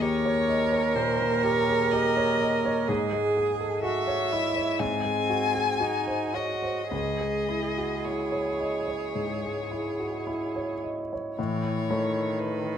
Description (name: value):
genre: classical, slow romantic movement for piano trio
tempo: 52-64 BPM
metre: 4/4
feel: rubato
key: C# minor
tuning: A4 = 442 Hz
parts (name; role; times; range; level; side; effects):
- rich violin; melody; 0.0-12.8 s; B4 to G#5; -31 LUFS; left 5 dB; none
- rich cello; second line; 0.0-12.8 s; D#3 to A#4; -29 LUFS; right 6 dB; none
- clear concert grand piano; accompaniment; 0.0-12.8 s; C#2 to D#5; -28 LUFS; left 1 dB; none
room: moderate recital hall reverb, RT60 1.6 s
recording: close, detailed microphones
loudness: -24 LUFS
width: side -8 dB against mid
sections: 0.0-11.4 A section; 11.4-12.8 B section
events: none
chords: 0.0 D#7; 2.9 C#m/G#; 4.8 G#7; 6.9 C#m; 11.4 A